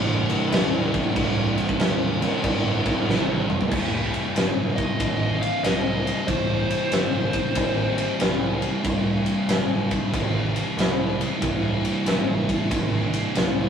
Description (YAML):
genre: stoner and doom metal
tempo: 93 BPM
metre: 4/4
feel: swing 66% on 8ths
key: C minor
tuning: A4 = 441 Hz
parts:
  - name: sludgy distorted guitar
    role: riff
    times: 0.0-3.7 s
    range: C2 to C3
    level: -31 LUFS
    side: right 2 dB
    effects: none
  - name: thick fuzz guitar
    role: riff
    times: 0.0-13.7 s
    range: C2 to C3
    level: -24 LUFS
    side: equal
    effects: distortion
  - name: growling picked electric bass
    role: bass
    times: 0.0-13.7 s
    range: C1 to C2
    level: -30 LUFS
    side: right 1 dB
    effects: overdrive, tube saturation
  - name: big rock drum kit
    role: drums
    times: 0.3-13.6 s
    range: crash cymbal, kick drum, ride cymbal, snare drum, toms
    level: -24 LUFS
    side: equal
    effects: none
  - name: fuzz lead guitar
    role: melody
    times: 4.8-8.2 s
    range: C5 to F5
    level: -27 LUFS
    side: left 2 dB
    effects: distortion
room: moderate studio reverb, RT60 0.5 s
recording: rough rehearsal-room recording, warm saturation, small room ambience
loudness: -20 LUFS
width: side -7 dB against mid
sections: 0.0-3.7 A section; 3.7-13.7 B section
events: drum fill 3.1-3.7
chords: 0.0 Cm; 3.7 C5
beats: 0.52 | 1.15 1.79 2.43 3.07 | 3.71 4.35 4.99 5.63 | 6.28 6.92 7.56 8.20 | 8.85 9.49 10.13 10.78 | 11.42 12.06 12.71 13.35